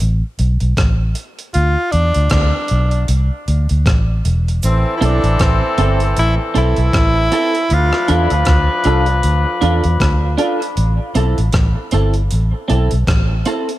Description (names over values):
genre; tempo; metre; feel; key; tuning
dub reggae; 78 BPM; 4/4; swing 58% on 16ths; A minor; A4 = 441 Hz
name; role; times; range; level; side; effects
vintage muted fingered electric bass; bass; 0.0-13.4 s; E1 to E2; -15 LUFS; equal; none
breakbeat sampler-style drum kit; drums; 0.0-13.8 s; hi-hat, kick drum, rim click; -20 LUFS; equal; none
bright tenor saxophone; melody; 1.5-8.1 s; C4 to F4; -20 LUFS; equal; dub echo
clear horn section; second line; 4.6-10.4 s; E3 to B4; -21 LUFS; left 2 dB; dub echo
cabasa; percussion; 4.6-4.8 s; none; -31 LUFS; right 7 dB; none
clean electric guitar; accompaniment; 5.0-13.7 s; C4 to A4; -21 LUFS; right 2 dB; analog chorus, dub echo
room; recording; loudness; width
light reverb, small room ambience; none; -13 LUFS; side -15 dB against mid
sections
0.0-13.8 A section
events
break 0.0-4.6; part muted 4.6-13.8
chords
0.0 Gadd9 (rootless); 1.5 D5; 4.6 Am; 7.7 Dm; 10.8 Am